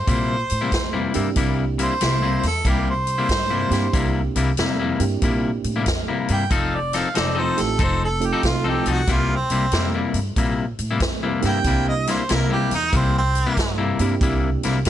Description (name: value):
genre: electric blues shuffle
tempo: 93 BPM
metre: 4/4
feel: swing 66% on 8ths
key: C mixolydian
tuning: A4 = 440 Hz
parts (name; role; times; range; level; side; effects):
- mellow harmonica; melody; 0.0-13.8 s; C4 to G5; -24 LUFS; right 2 dB; none
- upright bass; bass; 0.0-14.9 s; F1 to Bb2; -24 LUFS; right 1 dB; none
- clean electric guitar; riff; 0.1-14.9 s; C3 to A4; -24 LUFS; left 5 dB; none
- swinging big-band drum kit; drums; 0.1-14.9 s; hi-hat, kick drum, snare drum; -25 LUFS; equal; none
- reed electric piano; accompaniment; 1.1-14.8 s; A3 to A4; -26 LUFS; right 8 dB; overdrive
room: little or no reverb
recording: nothing above 10.8 kHz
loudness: -18 LUFS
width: side -11 dB against mid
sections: 0.0-14.9 A section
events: harmonica solo 0.0-14.9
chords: 0.0 C7; 6.5 F7; 9.1 C7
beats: 0.08 0.72 | 1.36 2.01 2.65 3.29 | 3.94 4.58 5.22 5.86 | 6.51 7.15 7.79 8.44 | 9.08 9.72 10.36 11.01 | 11.65 12.29 12.93 13.57 | 14.21 14.85